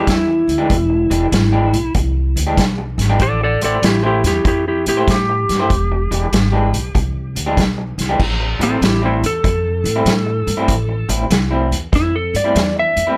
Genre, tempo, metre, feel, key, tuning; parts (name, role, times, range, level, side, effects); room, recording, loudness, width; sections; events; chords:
electric blues shuffle; 96 BPM; 4/4; swing 66% on 8ths; A minor; A4 = 441 Hz
electric slide guitar; melody; 0.0-13.2 s; C4 to E5; -21 LUFS; equal
electric guitar through a small old amp; riff; 0.0-13.2 s; A2 to C5; -23 LUFS; equal; tremolo
upright bass; bass; 0.0-13.2 s; E1 to A2; -22 LUFS; equal
vintage drum kit; drums; 0.1-13.1 s; crash cymbal, hi-hat, kick drum, snare drum; -21 LUFS; equal
light reverb; -16 LUFS; mono
0.0-8.2 A section; 8.2-13.2 B section
electric slide guitar solo 8.2-13.2
0.0 E7#9; 3.2 Am7; 5.7 E7#9; 8.2 Am7